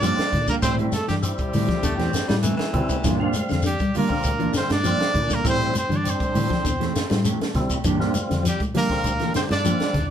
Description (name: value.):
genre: afrobeat.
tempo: 100 BPM.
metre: 4/4.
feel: straight.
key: G dorian.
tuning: A4 = 440 Hz.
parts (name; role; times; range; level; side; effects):
clear trumpet; melody; 0.0-10.1 s; G4 to D5; -27 LUFS; equal; none.
edgy alto saxophone; second line; 0.0-10.1 s; G3 to D4; -30 LUFS; right 3 dB; none.
percussive tonewheel organ; accompaniment; 0.0-10.0 s; G3 to F5; -31 LUFS; equal; slow rotary speaker.
clean electric guitar; arpeggios; 0.0-9.8 s; D3 to G3; -28 LUFS; left 4 dB; none.
mellow electric guitar; stabs; 0.0-10.0 s; E3 to G4; -28 LUFS; right 4 dB; none.
fingered electric bass; bass; 0.0-10.1 s; D2 to G3; -27 LUFS; equal; none.
compact cocktail drum kit; drums; 0.0-10.1 s; hi-hat, kick drum, snare drum; -28 LUFS; equal; none.
congas; percussion; 0.0-10.1 s; none; -29 LUFS; left 1 dB; none.
shekere; percussion; 0.0-9.8 s; none; -30 LUFS; left 4 dB; none.
raspy baritone saxophone; second line; 1.8-3.4 s; E3 to C4; -29 LUFS; left 1 dB; none.
room: wet studio ambience, RT60 0.5 s.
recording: band playing live in one room.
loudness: -20 LUFS.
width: side -9 dB against mid.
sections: 0.0-10.1 A section.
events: none.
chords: 0.0 Gm7; 0.6 Am7; 3.0 Gm7; 5.4 Am7; 7.8 Gm7.